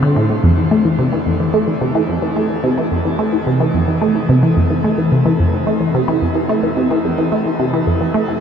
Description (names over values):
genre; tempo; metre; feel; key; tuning
ambient; 109 BPM; 4/4; straight; F major; A4 = 438 Hz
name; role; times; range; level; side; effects
resonant blip pluck; solo; 0.0-8.4 s; F2 to A3; -13 LUFS; equal; phaser, vintage 12-bit sampler grit, tape echo
room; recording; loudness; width
wet shimmer reverb, RT60 8.6 s; dark, warm production; -13 LUFS; side -7 dB against mid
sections
0.4-8.4 A section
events
none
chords
none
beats
| 0.44 0.99 1.54 2.09 | 2.64 3.19 3.74 4.29 | 4.84 5.39 5.94 6.49 | 7.04 7.59 8.14